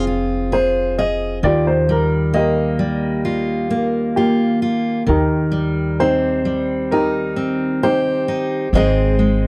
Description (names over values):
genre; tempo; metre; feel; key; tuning
acoustic folk-pop ballad; 66 BPM; 4/4; straight; Eb major; A4 = 440 Hz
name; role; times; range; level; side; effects
dark upright piano; melody; 0.0-9.5 s; Bb3 to Eb5; -21 LUFS; equal; none
fingerpicked steel-string acoustic guitar; accompaniment; 0.0-9.5 s; Ab2 to Ab4; -22 LUFS; equal; none
upright bass; bass; 0.0-9.5 s; F1 to Eb2; -25 LUFS; equal; none
room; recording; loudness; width
light reverb; dry, close 1970s-style studio recording; -18 LUFS; mono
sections
0.0-9.5 A section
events
none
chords
0.0 Fm; 1.4 Ebadd9; 5.1 Cm/Eb; 8.7 Ab